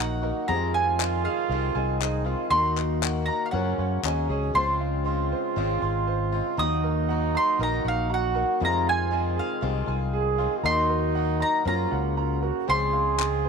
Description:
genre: indie folk with a building arrangement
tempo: 118 BPM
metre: 4/4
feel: straight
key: Db major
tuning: A4 = 440 Hz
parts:
  - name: mandolin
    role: melody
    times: 0.0-13.5 s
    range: F5 to Eb6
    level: -26 LUFS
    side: equal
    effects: none
  - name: warm trombone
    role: second line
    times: 0.0-13.5 s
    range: Db4 to Ab4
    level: -29 LUFS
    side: right 12 dB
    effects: none
  - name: picked swing-style acoustic guitar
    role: accompaniment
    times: 0.0-13.5 s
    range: F2 to Ab4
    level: -35 LUFS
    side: left 14 dB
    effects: none
  - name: warm upright piano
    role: accompaniment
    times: 0.0-13.5 s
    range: F1 to Eb5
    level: -37 LUFS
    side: left 16 dB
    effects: none
  - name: pedal harmonium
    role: sustained chords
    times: 0.0-13.5 s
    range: Db3 to Gb4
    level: -36 LUFS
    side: left 13 dB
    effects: none
  - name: clear upright piano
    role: arpeggios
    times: 0.0-13.5 s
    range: Ab4 to C6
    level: -34 LUFS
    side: right 10 dB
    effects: none
  - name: fingered electric bass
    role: bass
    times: 0.0-13.5 s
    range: Ab1 to Gb2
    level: -28 LUFS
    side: left 1 dB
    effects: none
  - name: group handclap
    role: percussion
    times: 1.0-4.2, 13.2-13.3 s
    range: none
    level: -29 LUFS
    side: left 16 dB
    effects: none
room: light reverb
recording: 1960s-style stereo with parts hard left and right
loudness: -22 LUFS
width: side -5 dB against mid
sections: 0.0-4.5 A section; 4.5-13.5 A section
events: none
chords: 0.5 Fm7; 2.5 Ebm; 3.5 Gbmaj7; 4.0 Ab7sus4; 4.5 Dbmaj7; 6.6 Ebm; 8.6 Fm7; 10.6 Ebm; 11.7 Gbmaj7; 12.7 Dbmaj7

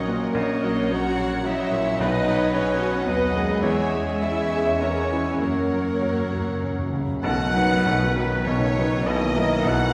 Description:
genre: classical, romantic movement for piano and orchestra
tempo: 96-113 BPM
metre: 3/4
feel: rubato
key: B major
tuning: A4 = 440 Hz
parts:
  - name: clear baby grand piano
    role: melody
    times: 0.0-9.9 s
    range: Bb1 to Db5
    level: -28 LUFS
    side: equal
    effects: none
  - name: rich studio violin section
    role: melody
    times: 0.0-9.9 s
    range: B4 to A#5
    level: -38 LUFS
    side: equal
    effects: none
  - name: bright clarinet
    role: second line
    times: 0.0-9.9 s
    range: Gb4 to D#5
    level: -36 LUFS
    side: equal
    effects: none
  - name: hollow silver concert flute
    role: second line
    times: 0.0-9.9 s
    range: G#4 to F#5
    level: -34 LUFS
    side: equal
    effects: none
  - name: rich studio violin section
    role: second line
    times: 0.0-9.9 s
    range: G#4 to F#5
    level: -34 LUFS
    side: equal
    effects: none
  - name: warm oboe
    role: second line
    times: 0.0-9.9 s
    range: B4 to F#5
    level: -34 LUFS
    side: equal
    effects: none
  - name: rich symphonic viola section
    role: accompaniment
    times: 0.0-9.9 s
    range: A#3 to E5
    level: -36 LUFS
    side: equal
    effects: none
  - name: warm bassoon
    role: accompaniment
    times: 0.0-9.9 s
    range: D#3 to G#3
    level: -34 LUFS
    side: equal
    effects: none
  - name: mellow French horn section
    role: sustained chords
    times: 0.0-9.9 s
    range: Gb3 to E4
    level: -34 LUFS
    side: equal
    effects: none
  - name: rich studio cello section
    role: bass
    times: 0.0-9.9 s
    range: B2 to F#4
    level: -32 LUFS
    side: equal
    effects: none
  - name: warm studio double bass section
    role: bass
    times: 0.0-9.9 s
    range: Bb1 to F#2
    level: -36 LUFS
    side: equal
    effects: none
  - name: timpani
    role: percussion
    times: 2.0-2.8, 5.4-7.2 s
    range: F#2 to B2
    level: -37 LUFS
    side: equal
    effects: none
  - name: tam-tam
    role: percussion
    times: 7.2-9.6 s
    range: none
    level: barely audible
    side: none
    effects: none
room: wet scoring stage reverb, RT60 1.6 s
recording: recorded in a church or concert hall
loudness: -23 LUFS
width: mono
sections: 0.0-7.3 A section; 7.3-9.9 B section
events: timpani fill 5.4-7.3; band accent 7.3-7.9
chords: 0.4 F#/A#; 2.0 B; 3.6 C#m/E; 5.4 F#; 7.3 B; 9.1 F#7/B

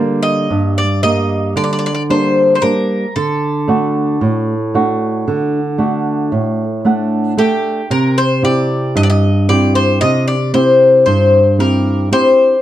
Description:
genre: greek folk, Greek bouzouki band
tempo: 114 BPM (eighths)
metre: 9/8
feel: straight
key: G harmonic minor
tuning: A4 = 442 Hz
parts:
  - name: Greek bouzouki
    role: melody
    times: 0.0-12.6 s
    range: G4 to Eb5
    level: -14 LUFS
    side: left 2 dB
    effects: none
  - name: flamenco guitar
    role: accompaniment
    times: 0.0-12.5 s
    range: G2 to F#5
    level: -14 LUFS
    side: right 1 dB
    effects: none
room: wet small room reverb, RT60 0.5 s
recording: dark, warm production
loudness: -12 LUFS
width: side -12 dB against mid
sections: 0.0-12.6 A section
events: none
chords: 0.0 Gm; 3.2 D; 7.9 C

